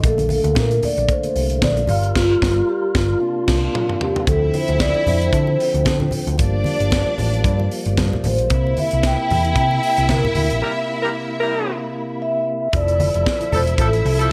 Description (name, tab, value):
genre	disco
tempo	113 BPM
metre	4/4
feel	swing 56% on 16ths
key	F major from 4.3 s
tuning	A4 = 440 Hz
part	tonewheel organ	sustained chords	0.0-14.3 s	C3 to Bb4	-29 LUFS	equal	overdrive, fast rotary speaker
part	hollow-body short-scale picked electric bass	bass	0.0-14.3 s	E1 to D3	-22 LUFS	equal	none
part	tight funk drum kit	drums	0.0-14.3 s	crash cymbal, hi-hat, kick drum, snare drum, toms	-25 LUFS	equal	none
part	vibraphone with soft mallets	melody	0.1-14.3 s	F4 to G5	-23 LUFS	equal	tape echo
part	congas	percussion	0.2-13.9 s	none	-29 LUFS	equal	none
part	warm studio string section	second line	4.3-14.3 s	D4 to E5	-28 LUFS	equal	none
part	warm horn section	stabs	10.6-14.3 s	F3 to Bb4	-25 LUFS	equal	none
room	light reverb, studio ambience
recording	none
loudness	-19 LUFS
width	mono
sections	0.0-4.3 A section; 4.3-12.7 B section; 12.7-14.3 C section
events	band accent 2.2-4.3, 10.6-12.7; drum fill 3.2-4.3; break 10.6-12.7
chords	0.0 Bbmaj7; 1.9 Gm7; 3.2 C9sus4; 4.3 Dm7; 6.4 Gm9; 8.5 C7; 12.7 Fmaj7